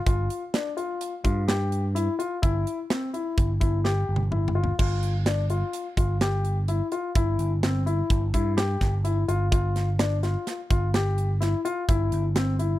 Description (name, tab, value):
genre	progressive instrumental, band music in an uneven meter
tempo	127 BPM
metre	5/4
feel	straight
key	unclear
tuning	A4 = 442 Hz
part	warm concert grand piano	arpeggios	0.1-12.8 s	C4 to G4	-29 LUFS	left 4 dB	none
part	picked electric bass	bass	0.1-12.7 s	G1 to G2	-25 LUFS	right 1 dB	none
part	tight metal drum kit	drums	0.1-12.7 s	crash cymbal, hi-hat, kick drum, snare drum, toms	-27 LUFS	right 1 dB	none
room	little or no reverb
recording	dry, close 1970s-style studio recording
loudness	-23 LUFS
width	side -15 dB against mid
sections	0.0-4.8 A section; 4.8-12.8 B section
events	drum fill 3.8-4.8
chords	0.1 G5; 2.4 C/G (rootless); 4.8 G5; 7.2 C/G (rootless); 9.5 G5; 11.9 C/G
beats	| 0.06 0.53 1.01 1.48 1.95 | 2.42 2.90 3.37 3.84 4.32 | 4.79 5.26 5.74 6.21 6.68 | 7.16 7.63 8.10 8.57 9.05 | 9.52 9.99 10.47 10.94 11.41 | 11.89 12.36